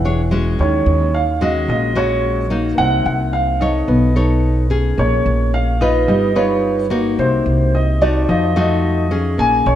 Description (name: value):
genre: bossa nova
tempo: 109 BPM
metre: 4/4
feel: straight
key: unclear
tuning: A4 = 442 Hz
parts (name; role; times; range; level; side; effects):
- dark baby grand piano; melody; 0.0-9.8 s; C5 to Ab5; -19 LUFS; right 1 dB; lush chorus, analog delay
- nylon-string guitar; accompaniment; 0.0-9.8 s; Bb2 to C#5; -18 LUFS; left 1 dB; none
- upright bass; bass; 0.0-9.8 s; E1 to F2; -18 LUFS; equal; none
room: moderate plate reverb, RT60 2.5 s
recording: dreamy mix soaked in reverb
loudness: -14 LUFS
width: side -11 dB against mid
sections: 0.0-9.8 A section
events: none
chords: 0.0 E13; 0.6 Ebm7; 2.8 Cm7b5; 3.9 B9; 5.0 Bbm7; 6.1 G7alt; 7.2 Cm7b5; 8.3 F7b9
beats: 0.04 | 0.59 1.14 1.69 2.24 | 2.79 3.33 3.88 4.43 | 4.98 5.53 6.08 6.63 | 7.18 7.73 8.28 8.83 | 9.38